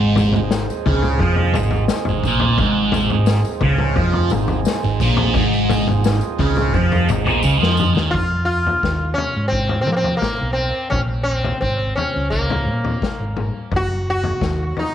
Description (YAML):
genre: psychedelic rock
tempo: 86 BPM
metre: 4/4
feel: straight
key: F phrygian from 8.1 s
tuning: A4 = 440 Hz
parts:
  - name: pedal harmonium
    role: sustained chords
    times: 0.0-8.1 s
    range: F3 to Ab4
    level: -25 LUFS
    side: right 9 dB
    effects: none
  - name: thick fuzz guitar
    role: riff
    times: 0.0-8.1 s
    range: Ab2 to F3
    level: -18 LUFS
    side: right 1 dB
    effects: distortion, phaser
  - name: picked electric bass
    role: bass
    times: 0.0-14.7 s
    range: Gb1 to F3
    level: -21 LUFS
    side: equal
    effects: none
  - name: vintage drum kit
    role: drums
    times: 0.2-14.9 s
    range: kick drum, snare drum, toms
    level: -22 LUFS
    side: left 3 dB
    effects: none
  - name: tambourine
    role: percussion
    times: 0.2-8.0 s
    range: none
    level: -40 LUFS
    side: left 16 dB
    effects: none
  - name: sitar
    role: melody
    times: 8.1-14.9 s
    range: Bb3 to Gb4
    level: -21 LUFS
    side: equal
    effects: tape echo
room: moderate spring reverb, RT60 1.6 s, studio reverb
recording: 1960s-style stereo with parts hard left and right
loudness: -16 LUFS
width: side -10 dB against mid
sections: 0.0-8.1 A section; 8.1-14.9 B section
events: drum fill 7.4-8.1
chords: 0.0 Ab6; 8.1 Fm; 10.9 Bbm; 13.7 N.C.